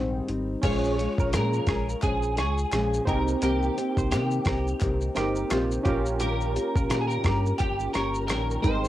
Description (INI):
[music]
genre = indie pop, bedroom pop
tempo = 86 BPM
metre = 4/4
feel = swing 60% on 16ths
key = Bb dorian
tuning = A4 = 440 Hz
[part]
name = nylon-string guitar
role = accompaniment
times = 0.0-8.9 s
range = Ab2 to Ab4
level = -30 LUFS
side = left 3 dB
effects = analog chorus, vibrato effect, cassette tape
[part]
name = warm analog keys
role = accompaniment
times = 0.0-8.9 s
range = Ab3 to G5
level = -31 LUFS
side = right 3 dB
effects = chorus, cassette tape
[part]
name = sub bass with octave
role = bass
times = 0.0-8.9 s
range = G1 to C3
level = -29 LUFS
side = equal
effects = none
[part]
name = dusty soul sampler-style drum kit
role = drums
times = 0.3-8.9 s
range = crash cymbal, hi-hat, kick drum, rim click, shaker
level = -28 LUFS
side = equal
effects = cassette tape
[part]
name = electric guitar at the edge of break-up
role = melody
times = 0.6-8.9 s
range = G4 to Db5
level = -31 LUFS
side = equal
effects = ensemble chorus, cassette tape, analog delay
[part]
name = semi-hollow electric guitar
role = second line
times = 0.6-8.2 s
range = F4 to Db5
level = -36 LUFS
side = right 4 dB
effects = lush chorus, cassette tape, analog delay
[part]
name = group handclap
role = percussion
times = 1.3-8.5 s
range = none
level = -42 LUFS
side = left 4 dB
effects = none
[sound]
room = light reverb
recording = home recording on cassette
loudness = -23 LUFS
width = side -13 dB against mid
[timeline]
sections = 0.6-8.9 A section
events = none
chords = 0.0 Abmaj7; 0.6 Bbm7; 3.1 Cm7; 5.9 Eb7/Bb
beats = | 0.63 1.33 2.02 2.72 | 3.42 4.12 4.81 5.51 | 6.21 6.91 7.60 8.30